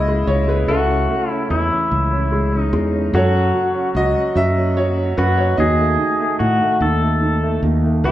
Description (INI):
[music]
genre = acoustic folk-pop ballad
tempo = 49 BPM (dotted quarters)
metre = 6/8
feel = straight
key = unclear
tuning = A4 = 440 Hz
[part]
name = warm baby grand piano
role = melody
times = 0.0-8.1 s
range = C#3 to E5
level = -20 LUFS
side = right 1 dB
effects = none
[part]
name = pedal steel guitar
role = second line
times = 0.0-8.1 s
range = E4 to A4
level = -21 LUFS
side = left 1 dB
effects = none
[part]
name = fretless electric bass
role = bass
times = 0.0-8.1 s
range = C#2 to A2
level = -19 LUFS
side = equal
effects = none
[sound]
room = wet large studio reverb, RT60 0.9 s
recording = band playing live in one room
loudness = -15 LUFS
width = side -13 dB against mid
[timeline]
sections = 0.0-8.1 A section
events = none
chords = 0.0 C#m7; 0.7 Amaj7/C#; 3.1 F#m; 5.6 D#dim